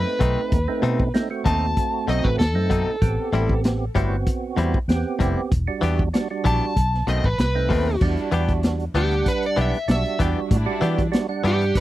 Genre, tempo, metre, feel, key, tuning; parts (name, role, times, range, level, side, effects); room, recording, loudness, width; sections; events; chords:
straight-eighth soul blues; 96 BPM; 4/4; straight; E minor; A4 = 440 Hz
overdriven slide guitar; melody; 0.0-11.8 s; G4 to A5; -26 LUFS; left 1 dB
percussive tonewheel organ; accompaniment; 0.0-11.8 s; G3 to F#5; -27 LUFS; right 7 dB; chorus vibrato, slow rotary speaker
vintage muted fingered electric bass; bass; 0.0-11.7 s; E1 to E3; -23 LUFS; equal
crunchy breakbeat drum kit; drums; 0.1-11.8 s; crash cymbal, hi-hat, kick drum, snare drum; -23 LUFS; equal
direct-recorded clean electric guitar; stabs; 0.2-11.6 s; A2 to G4; -26 LUFS; left 5 dB
dark studio string section; sustained chords; 8.0-11.1 s; G3 to G4; -34 LUFS; left 1 dB
little or no reverb; dry, close 1970s-style studio recording; -19 LUFS; side -15 dB against mid
0.0-8.0 A section; 8.0-11.8 B section
electric slide guitar solo 8.0-11.8
0.0 B7b9; 3.0 Am7; 5.5 Em7; 6.8 B7b9; 8.0 Em7